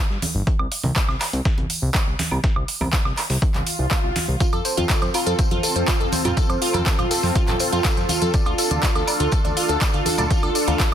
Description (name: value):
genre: progressive house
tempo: 122 BPM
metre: 4/4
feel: straight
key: unclear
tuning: A4 = 443 Hz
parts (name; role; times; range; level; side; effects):
- fat analog bass; bass; 0.1-10.8 s; G1 to F2; -24 LUFS; equal; sidechain pumping
- dusty soul sampler-style drum kit; drums; 0.1-10.9 s; hi-hat, snare drum; -33 LUFS; equal; high-pass filter on snare, high-pass filter on hats, high-pass filter on room
- big-room dance drum kit; drums; 0.2-10.9 s; handclaps, hi-hat, woodblock; -26 LUFS; right 1 dB; none
- congas and woodblock; percussion; 0.2-10.9 s; none; -30 LUFS; right 2 dB; sidechain pumping on perc
- electronic kick drum; drums; 0.5-10.9 s; none; -21 LUFS; equal; none
- swell; sound effects; 3.6-4.4 s; none; -30 LUFS; equal; none
- lush unison pad; sustained chords; 4.4-10.9 s; C4 to A4; -26 LUFS; equal; chorus, phaser, sidechain pumping
- glassy wavetable pluck; arpeggios; 4.4-10.8 s; F4 to D5; -24 LUFS; equal; chorus, sidechain pumping, ping-pong delay
- tambourine; percussion; 4.4-10.9 s; none; -31 LUFS; left 3 dB; none
room: digital ambience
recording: dense, heavily limited modern master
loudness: -18 LUFS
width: side -10 dB against mid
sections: 0.0-10.9 A section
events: swell 3.6-4.4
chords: 0.0 N.C.; 4.4 F; 8.3 Dm